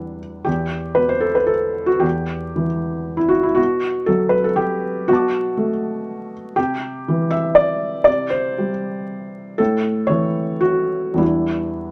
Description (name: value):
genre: neoclassical minimalist piano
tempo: 100-124 BPM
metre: 3/4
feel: rubato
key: E minor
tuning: A4 = 440 Hz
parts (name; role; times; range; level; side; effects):
- felt-muted upright piano; solo; 0.0-11.9 s; E2 to D6; -20 LUFS; equal; none
room: moderate studio reverb, RT60 0.6 s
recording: vinyl crackle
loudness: -20 LUFS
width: mono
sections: 0.5-11.9 A section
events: none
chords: 0.5 Em; 3.6 Bm7; 6.6 Cadd9; 9.6 A; 11.2 Em7